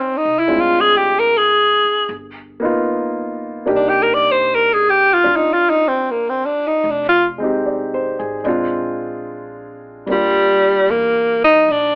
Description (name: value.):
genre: jazz ballad.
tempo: 75 BPM.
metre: 4/4.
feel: swing 69% on 8ths.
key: C minor.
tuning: A4 = 440 Hz.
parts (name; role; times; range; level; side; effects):
warm tenor saxophone; melody; 0.0-12.0 s; G3 to D5; -12 LUFS; equal; none.
warm baby grand piano; accompaniment; 0.0-12.0 s; G3 to D5; -21 LUFS; equal; none.
upright bass; bass; 0.0-12.0 s; F1 to Fb2; -38 LUFS; equal; none.
room: light reverb.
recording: telephone sound.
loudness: -13 LUFS.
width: side -30 dB against mid.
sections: 0.0-10.1 A section; 10.1-12.0 B section.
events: tenor saxophone solo 0.0-10.1.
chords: 0.5 Dm7b5; 2.1 G7alt; 3.7 Cm9; 6.8 Fm7; 8.5 Bb7; 10.1 Ebmaj9.